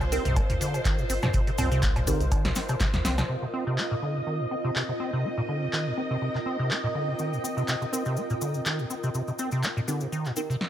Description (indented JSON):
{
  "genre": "acid house",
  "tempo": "123 BPM",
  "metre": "4/4",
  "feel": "swing 54% on 16ths",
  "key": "unclear",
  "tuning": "A4 = 439 Hz",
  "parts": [
    { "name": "string machine, full ensemble", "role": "sustained chords", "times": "0.0-10.6 s", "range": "C5 to Eb5", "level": "-35 LUFS", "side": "equal", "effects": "ensemble chorus, sidechain pumping" },
    { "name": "acid bass, square", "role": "riff", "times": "0.0-10.6 s", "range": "Bb2 to C4", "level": "-29 LUFS", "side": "equal", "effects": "overdrive, wide subtle chorus, cassette tape, digital delay" },
    { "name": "warm sub bass", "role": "bass", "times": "0.0-3.2 s", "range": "G1 to Eb2", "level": "-29 LUFS", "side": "equal", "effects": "tube saturation, sidechain pumping" },
    { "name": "punchy analog drum machine", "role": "drums", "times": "0.0-10.7 s", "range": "cowbell, handclaps, hi-hat, snare drum, toms", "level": "-31 LUFS", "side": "equal", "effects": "none" },
    { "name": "cabasa", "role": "percussion", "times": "0.0-3.3, 7.2-10.6 s", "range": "none", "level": "-39 LUFS", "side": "left 5 dB", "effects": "none" },
    { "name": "granular cloud pad", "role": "texture", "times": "0.0-10.6 s", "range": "C4 to G5", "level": "-35 LUFS", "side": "right 1 dB", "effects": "built-in reverb, sidechain pumping" },
    { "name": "deep mellow chord stab", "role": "stabs", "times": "0.1-10.5 s", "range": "C4 to Bb4", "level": "-35 LUFS", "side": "right 2 dB", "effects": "chorus, phaser, digital delay" },
    { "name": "electronic kick drum", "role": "drums", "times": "0.4-2.9 s", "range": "none", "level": "-27 LUFS", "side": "equal", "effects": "none" }
  ],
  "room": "light reverb",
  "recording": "none",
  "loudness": "-25 LUFS",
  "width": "side -11 dB against mid",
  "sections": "0.0-3.3 A section; 3.3-10.7 B section",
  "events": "drum fill 2.6-3.3; filter sweep on synth stab 3.3-10.7",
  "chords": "0.0 Cm7"
}